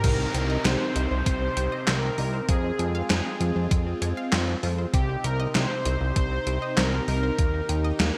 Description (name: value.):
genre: synthwave.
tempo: 98 BPM.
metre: 4/4.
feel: straight.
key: C minor.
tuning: A4 = 439 Hz.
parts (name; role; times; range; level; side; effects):
soft supersaw; melody; 0.0-7.7 s; G4 to C5; -33 LUFS; equal; digital delay.
phased analog pad; sustained chords; 0.0-8.2 s; C3 to Bb4; -35 LUFS; equal; phaser, chorus, sidechain pumping.
analog pluck; arpeggios; 0.0-8.2 s; Bb3 to Ab5; -39 LUFS; equal; none.
fat analog bass; bass; 0.0-8.1 s; C2 to F2; -29 LUFS; equal; none.
electronic kick drum; drums; 0.0-7.5 s; none; -27 LUFS; equal; none.
gated 80s digital drum machine; drums; 0.0-8.1 s; crash cymbal, handclaps, hi-hat, snare drum; -29 LUFS; equal; gated reverb, gated reverb snare.
swell and downlifter; sound effects; 0.1-4.9 s; none; -40 LUFS; equal; none.
room: moderate lush hall reverb, RT60 1.7 s, digital ambience.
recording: bright 1980s-style digital production.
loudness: -25 LUFS.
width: mono.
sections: 0.0-8.2 A section.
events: none.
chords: 0.0 Cm; 2.5 Fm; 4.9 Cm; 7.4 Eb.